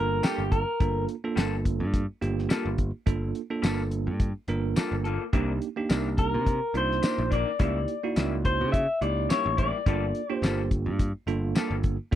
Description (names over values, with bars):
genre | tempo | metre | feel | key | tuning
straight-eighth soul blues | 106 BPM | 4/4 | swing 55% on 16ths | G minor | A4 = 440 Hz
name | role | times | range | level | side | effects
electric guitar through a small old amp | melody | 0.0-1.0, 6.2-10.7 s | G4 to E5 | -28 LUFS | left 2 dB | none
bell-like tine electric piano | accompaniment | 0.0-12.2 s | Bb3 to Bb4 | -31 LUFS | right 6 dB | medium stereo tremolo
modern bright picked electric bass | bass | 0.0-12.2 s | G1 to C#3 | -29 LUFS | equal | none
electric guitar through a small old amp | stabs | 0.2-11.8 s | C3 to A4 | -32 LUFS | left 5 dB | none
cloth-damped thuddy drum kit | drums | 0.2-12.2 s | hi-hat, kick drum, snare drum, tambourine | -26 LUFS | equal | none
room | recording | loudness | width
little or no reverb | dry, close 1970s-style studio recording | -24 LUFS | side -12 dB against mid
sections
0.0-12.2 A section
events
none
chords
0.0 Gm9; 5.3 Cm9; 7.6 C#dim7; 9.9 Gm9